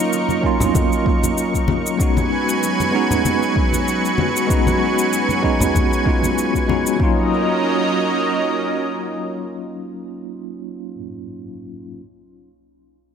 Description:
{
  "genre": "sunset chillout",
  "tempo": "96 BPM",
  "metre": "4/4",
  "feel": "swing 55% on 16ths",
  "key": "Eb minor",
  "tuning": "A4 = 440 Hz",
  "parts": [
    { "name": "bell-like tine electric piano", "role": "accompaniment", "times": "0.0-12.0 s", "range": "Gb3 to Gb4", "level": "-21 LUFS", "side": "moving between left 6 dB and right 7 dB", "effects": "fast stereo tremolo, auto-pan, dub echo" },
    { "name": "lush unison pad", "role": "sustained chords", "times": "0.0-10.3 s", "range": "Gb3 to Db6", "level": "-21 LUFS", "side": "right 1 dB", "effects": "chorus" },
    { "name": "cabasa", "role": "drums", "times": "0.1-7.0 s", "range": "none", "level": "-28 LUFS", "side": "left 4 dB", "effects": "none" },
    { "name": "congas", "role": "percussion", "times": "0.3-6.8 s", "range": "none", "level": "-26 LUFS", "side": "left 3 dB", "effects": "dub echo" },
    { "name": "electronic kick drum", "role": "drums", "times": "0.4-7.1 s", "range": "none", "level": "-20 LUFS", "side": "equal", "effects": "none" }
  ],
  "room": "light reverb, digital ambience",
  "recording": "echo-heavy mix",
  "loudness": "-16 LUFS",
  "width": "side -7 dB against mid",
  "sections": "0.0-7.0 A section; 7.0-9.5 B section",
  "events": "none",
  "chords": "0.0 Ebm7; 2.0 Db7sus4; 7.0 Ebm7"
}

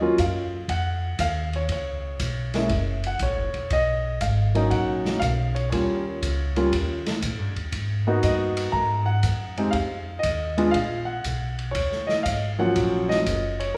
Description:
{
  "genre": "jazz piano trio",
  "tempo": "119 BPM",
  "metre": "4/4",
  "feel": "swing 68% on 8ths",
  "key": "Eb minor",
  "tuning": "A4 = 439 Hz",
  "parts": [
    { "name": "clear concert grand piano", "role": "melody", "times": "0.0-13.8 s", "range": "F3 to Bb5", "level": "-27 LUFS", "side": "equal", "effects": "none" },
    { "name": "upright bass", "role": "bass", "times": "0.0-13.7 s", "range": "Fb1 to Bb2", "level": "-29 LUFS", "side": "equal", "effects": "none" },
    { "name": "open jazz drum kit", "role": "drums", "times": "0.2-13.7 s", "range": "hi-hat, kick drum, ride cymbal, snare drum", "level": "-34 LUFS", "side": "equal", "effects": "none" }
  ],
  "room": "wet recital hall reverb, RT60 1.3 s",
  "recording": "recorded in a church or concert hall, small room ambience",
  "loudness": "-25 LUFS",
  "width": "mono",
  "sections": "0.0-13.8 A section",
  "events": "none",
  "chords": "0.0 Ebmadd9; 1.7 Db7(no3); 2.7 Gb7; 3.7 Bmaj9; 5.7 Eb7; 7.7 Abm9; 9.7 F7(no3); 10.8 Gbadd11/Bb; 11.8 Ebm9"
}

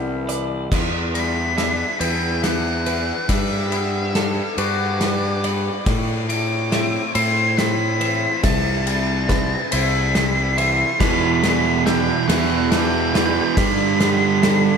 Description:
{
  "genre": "post-rock",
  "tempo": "47 BPM (dotted quarters)",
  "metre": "6/8",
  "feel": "straight",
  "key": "E minor",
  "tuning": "A4 = 445 Hz",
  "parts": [
    { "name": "twangy electric guitar", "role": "arpeggios", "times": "0.0-14.8 s", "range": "E2 to F#4", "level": "-29 LUFS", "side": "left 4 dB", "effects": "phaser, slapback echo" },
    { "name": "twelve-string electric guitar", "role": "arpeggios", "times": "0.0-14.8 s", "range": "A4 to E5", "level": "-30 LUFS", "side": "right 3 dB", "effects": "spring reverb, slapback echo" },
    { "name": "fuzz fingered electric bass", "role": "bass", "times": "0.0-14.7 s", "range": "C2 to A2", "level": "-23 LUFS", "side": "equal", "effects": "overdrive" },
    { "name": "loose indie drum kit", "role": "drums", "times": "0.3-14.6 s", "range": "crash cymbal, hi-hat, kick drum, ride cymbal, snare drum", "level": "-22 LUFS", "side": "left 1 dB", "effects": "none" },
    { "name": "octave-fuzz lead guitar", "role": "melody", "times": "1.1-14.8 s", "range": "D5 to D6", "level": "-23 LUFS", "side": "equal", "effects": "distortion, slapback echo" },
    { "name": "cranked stack guitar", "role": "riff", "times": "11.0-14.8 s", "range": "E2 to G3", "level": "-20 LUFS", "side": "right 10 dB", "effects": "overdrive" }
  ],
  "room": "moderate lush hall reverb, RT60 2.7 s",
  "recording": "big arena sound",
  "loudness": "-17 LUFS",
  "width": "side -6 dB against mid",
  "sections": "0.7-14.8 A section",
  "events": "build-up 0.7-14.8; drum fill 0.7-14.8",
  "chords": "0.0 Cmaj7; 0.7 Em7; 3.3 Gmaj7; 5.9 Am; 8.4 Cmaj7; 11.0 Em7; 13.6 G"
}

